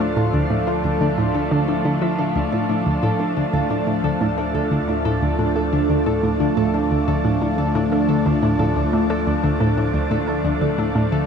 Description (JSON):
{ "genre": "ambient, sequencer-driven space music", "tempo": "89 BPM", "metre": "4/4", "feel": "straight", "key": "D minor", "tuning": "A4 = 440 Hz", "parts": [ { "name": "phased analog pad", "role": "sustained chords", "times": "0.0-11.3 s", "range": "F3 to F5", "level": "-21 LUFS", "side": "right 1 dB", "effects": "phaser, chorus" }, { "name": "concert harp", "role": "arpeggios", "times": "0.0-11.3 s", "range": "D4 to F5", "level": "-26 LUFS", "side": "left 2 dB", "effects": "auto-pan, analog delay" }, { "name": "analog pluck", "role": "riff", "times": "0.0-11.2 s", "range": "D2 to A3", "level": "-21 LUFS", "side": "equal", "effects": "chorus, vintage 12-bit sampler grit, analog delay" }, { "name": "analog drone", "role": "bass", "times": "0.0-11.3 s", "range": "D2", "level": "-30 LUFS", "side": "equal", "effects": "chorus" } ], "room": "wet shimmer reverb, RT60 6.9 s", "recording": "dark, warm production, nothing above 10.4 kHz", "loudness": "-17 LUFS", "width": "side -6 dB against mid", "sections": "0.0-11.3 A section", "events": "none", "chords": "0.0 Dm", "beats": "0.33 1.01 1.68 | 2.35 3.03 3.70 4.38 | 5.05 5.73 6.40 7.07 | 7.75 8.42 9.10 9.77 | 10.45 11.12" }